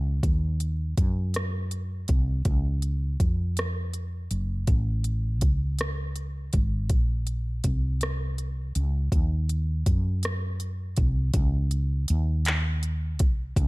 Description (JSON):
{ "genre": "slow six-eight R&B", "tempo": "54 BPM (dotted quarters)", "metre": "6/8", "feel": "straight", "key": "Db major", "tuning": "A4 = 440 Hz", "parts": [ { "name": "woody fretless electric bass", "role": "bass", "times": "0.0-13.7 s", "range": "Gb1 to Gb2", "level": "-26 LUFS", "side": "equal", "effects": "none" }, { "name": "smooth R&B drum kit", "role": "drums", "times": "0.2-13.7 s", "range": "handclaps, hi-hat, kick drum, rim click", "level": "-26 LUFS", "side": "equal", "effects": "none" } ], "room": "digital ambience", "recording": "none", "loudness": "-24 LUFS", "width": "side -23 dB against mid", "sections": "0.0-11.3 A section; 11.3-13.7 B section", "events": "none", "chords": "none" }